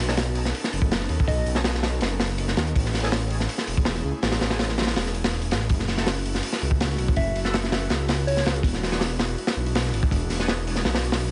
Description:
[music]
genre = drum and bass, jungle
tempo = 163 BPM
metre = 4/4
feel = straight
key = F# minor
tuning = A4 = 440 Hz
[part]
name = airy breathy pad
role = sustained chords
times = 0.3-11.3 s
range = G#3 to A4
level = -37 LUFS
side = equal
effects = chorus
[part]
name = dark detuned saw bass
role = bass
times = 0.0-11.3 s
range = E1 to D#2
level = -29 LUFS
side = equal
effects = none
[part]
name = overdriven tonewheel organ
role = stabs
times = 0.1-10.5 s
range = C#4 to A4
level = -39 LUFS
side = equal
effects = none
[part]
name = crunchy breakbeat drum kit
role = drums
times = 0.1-11.2 s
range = hi-hat, kick drum, snare drum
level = -27 LUFS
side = equal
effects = none
[part]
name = soft struck synth lead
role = melody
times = 1.3-1.5, 7.2-8.6 s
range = C#5 to E5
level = -33 LUFS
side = equal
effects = chorus, dub echo
[sound]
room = small room ambience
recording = nothing above 10.4 kHz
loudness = -24 LUFS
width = mono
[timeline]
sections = 0.0-5.7 A section; 5.7-11.3 A section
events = drop 0.0-5.7, 5.7-11.3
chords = 0.0 B9; 2.8 Amaj7; 5.7 F#m7; 8.6 E9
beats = 0.18 0.54 0.91 | 1.28 1.65 2.02 2.38 | 2.75 3.12 3.49 3.86 | 4.22 4.59 4.96 5.33 | 5.70 6.07 6.43 6.80 | 7.17 7.54 7.91 8.27 | 8.64 9.01 9.38 9.75 | 10.11 10.48 10.85 11.22

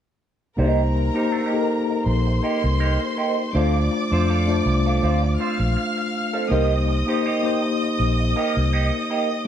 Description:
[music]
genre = soul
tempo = 81 BPM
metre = 4/4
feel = swing 54% on 16ths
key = C dorian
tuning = A4 = 440 Hz
[part]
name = warm studio violin section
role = second line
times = 0.6-9.4 s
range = Bb4 to F6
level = -27 LUFS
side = equal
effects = slapback echo
[part]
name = mellow tine electric piano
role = accompaniment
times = 0.6-9.5 s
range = A3 to C5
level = -23 LUFS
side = left 3 dB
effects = medium stereo tremolo
[part]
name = electric guitar through a small old amp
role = riff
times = 0.6-9.3 s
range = Bb3 to C5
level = -27 LUFS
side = right 6 dB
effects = wah
[part]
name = vintage muted fingered electric bass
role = bass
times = 0.6-8.9 s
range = Bb1 to F2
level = -21 LUFS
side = equal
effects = none
[sound]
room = light reverb, digital ambience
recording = dark, warm production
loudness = -19 LUFS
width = side -9 dB against mid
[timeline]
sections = 0.6-9.5 A section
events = none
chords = 0.6 Cm7; 3.5 Dm7; 6.5 Cm7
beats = | 0.58 1.32 2.06 2.80 | 3.54 4.28 5.02 5.76 | 6.51 7.25 7.99 8.73

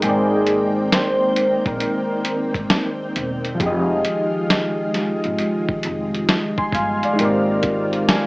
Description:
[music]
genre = lo-fi hip hop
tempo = 67 BPM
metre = 4/4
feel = swing 66% on 16ths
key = unclear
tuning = A4 = 440 Hz
[part]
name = warm velvety synth lead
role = melody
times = 0.0-3.0 s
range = Ab4 to C5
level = -22 LUFS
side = equal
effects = chorus, tape echo
[part]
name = warbly lo-fi synth keys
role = accompaniment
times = 0.0-8.3 s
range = F3 to C6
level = -21 LUFS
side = equal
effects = chorus, cassette tape
[part]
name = ensemble organ-string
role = sustained chords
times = 0.0-8.3 s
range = Eb3 to G5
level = -25 LUFS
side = equal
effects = ensemble chorus
[part]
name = upright bass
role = bass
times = 0.0-8.0 s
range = E1 to Bb1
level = -28 LUFS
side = equal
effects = none
[part]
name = lo-fi sampler-style drum kit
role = drums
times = 0.0-8.3 s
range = hi-hat, kick drum, snare drum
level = -20 LUFS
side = equal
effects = none
[sound]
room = wet studio reverb, RT60 0.6 s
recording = worn, warbling old tape, cassette tape, warbly pitch drift, small speaker sound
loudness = -17 LUFS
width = side -25 dB against mid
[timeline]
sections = 0.0-8.3 A section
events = synth keys fill 8.1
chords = 0.0 Abmaj9#11; 3.6 Fm7; 7.2 Abmaj9#11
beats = | 0.01 0.91 1.81 2.70 | 3.60 4.49 5.39 6.28 | 7.18 8.07

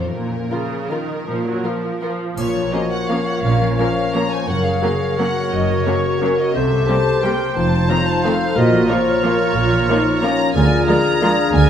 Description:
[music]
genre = classical, orchestral ballroom waltz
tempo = 150-194 BPM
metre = 3/4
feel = rubato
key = Bb minor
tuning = A4 = 440 Hz
[part]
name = warm studio violin section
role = melody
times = 0.0-11.7 s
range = Bb4 to Bb5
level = -24 LUFS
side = left 3 dB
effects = none
[part]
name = concert harp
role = arpeggios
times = 0.0-11.7 s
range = Gb2 to Eb6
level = -25 LUFS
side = left 6 dB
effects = none
[part]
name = dark studio cello section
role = bass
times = 0.0-11.7 s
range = D2 to C3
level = -24 LUFS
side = right 3 dB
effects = none
[part]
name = dark studio violin section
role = second line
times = 0.5-11.3 s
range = Bb3 to Bb4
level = -28 LUFS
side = left 2 dB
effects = none
[part]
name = rich studio viola section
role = accompaniment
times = 0.5-11.3 s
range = Db3 to Bb3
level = -25 LUFS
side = right 3 dB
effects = none
[part]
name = mellow hollow small flute group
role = second line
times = 2.4-11.7 s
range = F4 to D5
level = -26 LUFS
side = left 2 dB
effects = none
[part]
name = warm clarinet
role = second line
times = 2.4-11.7 s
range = Eb4 to Bb4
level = -25 LUFS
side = equal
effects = none
[part]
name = warm oboe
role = second line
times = 2.4-11.7 s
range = Bb4 to Db5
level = -25 LUFS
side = right 3 dB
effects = none
[part]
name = warm studio double bass section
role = bass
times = 2.4-11.7 s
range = F1 to D2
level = -23 LUFS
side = right 3 dB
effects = none
[part]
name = triangle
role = percussion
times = 2.4-3.1 s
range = none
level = -40 LUFS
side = left 1 dB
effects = none
[part]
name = warm French horn section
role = sustained chords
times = 2.7-11.7 s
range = Db4 to C5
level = -23 LUFS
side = left 2 dB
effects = none
[sound]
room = wet scoring stage reverb, RT60 1.8 s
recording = none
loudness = -15 LUFS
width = side -9 dB against mid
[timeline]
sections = 0.0-2.4 A section; 2.4-11.7 A section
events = none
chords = 0.1 Bbm; 4.5 Gb; 6.6 C7; 7.6 F7; 8.6 Bbm; 10.6 Bb7/D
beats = | 0.14 0.51 0.91 | 1.27 1.64 2.02 | 2.37 2.73 3.09 | 3.44 3.79 4.14 | 4.48 4.82 5.19 | 5.53 5.86 6.22 | 6.55 6.89 7.24 | 7.57 7.89 8.24 | 8.57 8.90 9.24 | 9.57 9.89 10.23 | 10.55 10.88 11.22 | 11.55

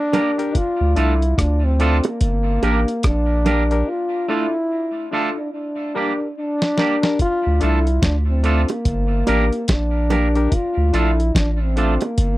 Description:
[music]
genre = roots reggae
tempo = 72 BPM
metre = 4/4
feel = swing 61% on 16ths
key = D minor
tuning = A4 = 440 Hz
[part]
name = dark trombone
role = melody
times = 0.0-12.4 s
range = Bb3 to F4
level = -22 LUFS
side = equal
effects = tape echo
[part]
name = twangy electric guitar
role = accompaniment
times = 0.1-11.9 s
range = G3 to Bb4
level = -26 LUFS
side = right 4 dB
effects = tape echo
[part]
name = barky reed electric piano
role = stabs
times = 0.1-12.0 s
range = D4 to Bb4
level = -24 LUFS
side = left 5 dB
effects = overdrive, fast tremolo
[part]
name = dusty soul sampler-style drum kit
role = drums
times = 0.1-12.4 s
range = hi-hat, kick drum, rim click, snare drum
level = -20 LUFS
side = equal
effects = none
[part]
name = bongos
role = percussion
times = 0.1-3.7, 8.7-12.2 s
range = none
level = -24 LUFS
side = right 5 dB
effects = none
[part]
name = warm sub bass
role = bass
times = 0.8-12.4 s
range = G1 to D2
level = -18 LUFS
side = equal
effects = none
[sound]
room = light reverb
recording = dry, close 1970s-style studio recording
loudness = -16 LUFS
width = side -17 dB against mid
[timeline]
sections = 0.0-7.2 A section; 7.2-12.4 A section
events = break 3.9-7.2; drum fill 5.5-7.2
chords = 0.0 Gm; 0.5 Dm; 2.2 Gm; 3.9 Dm; 5.5 Gm; 7.2 Dm; 8.9 Gm; 10.5 Dm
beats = | 0.55 1.38 2.21 3.04 | 3.87 4.70 5.53 6.36 | 7.19 8.02 8.85 9.69 | 10.52 11.35 12.18

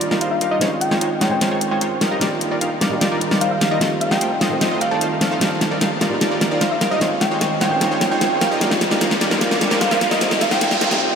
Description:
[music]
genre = future bass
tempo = 150 BPM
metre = 4/4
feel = half-time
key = Eb lydian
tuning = A4 = 440 Hz
[part]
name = felt-muted upright piano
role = accompaniment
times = 0.0-11.2 s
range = Eb3 to F4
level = -25 LUFS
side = right 2 dB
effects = diffuse ambient delay
[part]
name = ethereal airy pad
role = sustained chords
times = 0.0-11.0 s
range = Eb3 to Eb6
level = -32 LUFS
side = equal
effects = none
[part]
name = supersaw stab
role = riff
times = 0.0-11.0 s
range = G3 to G5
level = -22 LUFS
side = equal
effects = low-pass filter, diffuse ambient delay
[part]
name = wide detuned saw bass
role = bass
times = 0.0-11.0 s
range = Eb1 to F2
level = -35 LUFS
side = left 1 dB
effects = none
[part]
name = pop drum kit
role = drums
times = 0.0-11.0 s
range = hi-hat, snare drum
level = -20 LUFS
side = left 1 dB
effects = small room ambience
[part]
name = thumb-piano-like synth pluck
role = melody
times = 0.2-11.0 s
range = Eb5 to A5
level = -23 LUFS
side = equal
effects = chorus, diffuse ambient delay
[part]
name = riser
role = sound effects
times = 7.8-11.0 s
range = none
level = -28 LUFS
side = right 1 dB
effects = none
[sound]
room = wet huge ambient reverb, RT60 4.6 s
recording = dreamy mix soaked in reverb, high-pass filter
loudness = -16 LUFS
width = side -6 dB against mid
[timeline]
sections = 0.0-11.2 A section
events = build-up 0.0-11.2; drum fill 0.0-11.0; filter sweep on synth pluck 0.0-11.2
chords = 0.0 Ebmaj9; 0.6 Dbmaj9; 2.0 Ebmaj9; 3.8 F7; 5.4 Ebmaj9; 7.0 Dbmaj9; 8.4 Ebmaj9; 10.2 F7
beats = 0.21 | 0.61 1.01 1.41 1.81 | 2.21 2.61 3.01 3.41 | 3.81 4.21 4.61 5.01 | 5.41 5.81 6.21 6.61 | 7.01 7.41 7.81 8.21 | 8.61 9.01 9.41 9.81 | 10.21 10.61 11.01

